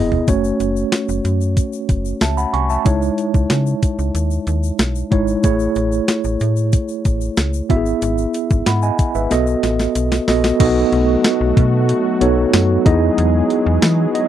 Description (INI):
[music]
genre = 1980s-style pop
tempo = 93 BPM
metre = 4/4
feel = straight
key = unclear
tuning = A4 = 440 Hz
[part]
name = mellow tine electric piano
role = accompaniment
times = 0.0-14.3 s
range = G#3 to C#6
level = -18 LUFS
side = right 2 dB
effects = medium stereo tremolo
[part]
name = slap-like FM bass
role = bass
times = 0.0-14.1 s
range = E#1 to E3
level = -19 LUFS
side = equal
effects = none
[part]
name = clean 12-bit digital drum machine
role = drums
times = 0.1-14.3 s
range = crash cymbal, hi-hat, kick drum, snare drum, tambourine, toms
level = -17 LUFS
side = equal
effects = overdrive
[part]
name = tube shaker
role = percussion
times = 0.3-10.6 s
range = none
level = -36 LUFS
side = left 21 dB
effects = none
[part]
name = warm analog pad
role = sustained chords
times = 10.6-14.3 s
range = F#3 to G#4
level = -22 LUFS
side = left 3 dB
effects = chorus
[sound]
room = little or no reverb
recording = dry, close 1970s-style studio recording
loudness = -14 LUFS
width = side -11 dB against mid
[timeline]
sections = 0.0-10.6 A section; 10.6-14.3 B section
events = drum fill 0.0, 9.3-10.6; tine electric piano fill 13.8-14.3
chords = 0.3 F#m; 2.9 C#madd9; 5.4 Amaj7; 7.7 E/G#; 9.3 B7; 12.9 Emaj7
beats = | 0.28 0.92 1.57 2.21 | 2.86 3.50 4.15 4.79 | 5.44 6.08 6.73 7.38 | 8.02 8.66 9.31 9.96 | 10.60 11.25 11.89 12.54 | 13.18 13.83